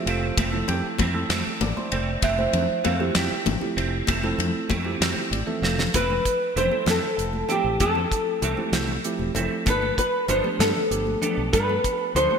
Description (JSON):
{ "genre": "electric jazz fusion", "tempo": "64 BPM (dotted quarters)", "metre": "6/8", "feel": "straight", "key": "F major, F lydian from 5.9 s", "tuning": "A4 = 441 Hz", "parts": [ { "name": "tine electric piano", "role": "accompaniment", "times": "0.0-12.4 s", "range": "E3 to G5", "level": "-29 LUFS", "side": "right 4 dB", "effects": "phaser" }, { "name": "clean electric guitar", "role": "stabs", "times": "0.1-12.3 s", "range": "E3 to A4", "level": "-29 LUFS", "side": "right 4 dB", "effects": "ensemble chorus, digital delay" }, { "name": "mellow fretless electric bass", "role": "bass", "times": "0.1-12.3 s", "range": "E1 to G2", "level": "-28 LUFS", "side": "equal", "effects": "none" }, { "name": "damped 70s drum kit", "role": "drums", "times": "0.1-12.3 s", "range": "hi-hat, kick drum, ride cymbal, snare drum", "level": "-27 LUFS", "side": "equal", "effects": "gated reverb" }, { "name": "congas", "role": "percussion", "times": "0.4-12.4 s", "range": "none", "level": "-32 LUFS", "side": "left 7 dB", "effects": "none" }, { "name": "flamenco guitar", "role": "melody", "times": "6.0-12.4 s", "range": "G4 to C5", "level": "-23 LUFS", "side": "equal", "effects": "lush chorus, digital delay" } ], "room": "moderate lush hall reverb, RT60 2.6 s", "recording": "bright 1980s-style digital production", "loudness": "-21 LUFS", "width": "side -6 dB against mid", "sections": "0.0-5.9 A section; 5.9-12.4 B section", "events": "tine electric piano fill 5.0-5.9; drum fill 5.3-5.9", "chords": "0.0 Fmaj7; 9.7 G9", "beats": "| 0.37 1.30 | 2.23 3.16 | 4.08 5.01 | 5.94 6.88 | 7.81 8.74 | 9.67 10.60 | 11.53" }